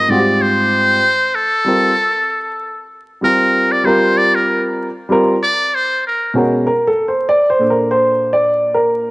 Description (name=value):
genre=hip hop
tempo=96 BPM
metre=4/4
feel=swing 57% on 16ths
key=Bb major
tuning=A4 = 440 Hz
part: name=trumpet with metal mute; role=melody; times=0.0-6.3 s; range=A4 to Eb5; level=-14 LUFS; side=equal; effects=cassette tape
part: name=dark baby grand piano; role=accompaniment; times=0.0-9.1 s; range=Ab2 to D5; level=-14 LUFS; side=equal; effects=cassette tape
room=moderate spring reverb, RT60 2.1 s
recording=home recording on cassette, vinyl crackle, nothing above 11.0 kHz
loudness=-12 LUFS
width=side -23 dB against mid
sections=0.0-6.7 A section; 6.7-9.1 A section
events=muted trumpet solo 0.0-6.7; grand piano solo 6.7-9.1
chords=0.0 Abmaj7; 1.7 C7sus4; 6.0 Bsus2; 6.7 Bbmaj7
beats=0.41 1.04 | 1.67 2.29 2.92 3.54 | 4.17 4.79 5.42 6.04 | 6.67 7.29 7.92 8.54